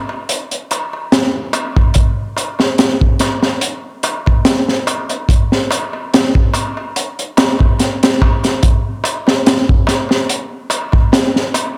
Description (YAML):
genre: trip hop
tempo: 72 BPM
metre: 4/4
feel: swing 54% on 16ths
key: none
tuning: none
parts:
  - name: darbuka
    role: percussion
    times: 0.1-11.7 s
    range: none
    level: -26 LUFS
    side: equal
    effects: none
  - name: crunchy breakbeat drum kit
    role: drums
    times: 0.3-11.8 s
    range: hi-hat, kick drum, snare drum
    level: -15 LUFS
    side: equal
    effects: none
room: wet plate reverb, RT60 2.0 s, studio ambience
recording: dreamy mix soaked in reverb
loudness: -15 LUFS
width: mono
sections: 0.0-11.8 A section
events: none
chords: none